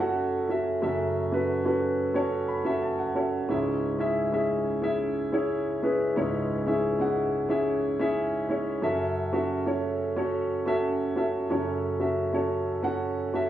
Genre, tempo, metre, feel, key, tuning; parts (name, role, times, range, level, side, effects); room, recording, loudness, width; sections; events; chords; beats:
pop; 90 BPM; 4/4; straight; F# minor; A4 = 442 Hz
warm concert grand piano; solo; 0.0-13.5 s; C#2 to B5; -25 LUFS; equal; cassette tape, analog delay
wet studio reverb, RT60 0.5 s; home recording on cassette, studio reverb; -25 LUFS; side -12 dB against mid
0.0-13.5 A section
grand piano fill 2.2-3.5
0.0 F#m7; 3.5 C#m; 8.8 F#m7
0.16 | 0.83 1.49 2.16 2.83 | 3.50 4.16 4.83 5.50 | 6.16 6.83 7.50 8.17 | 8.83 9.50 10.17 10.84 | 11.50 12.17 12.84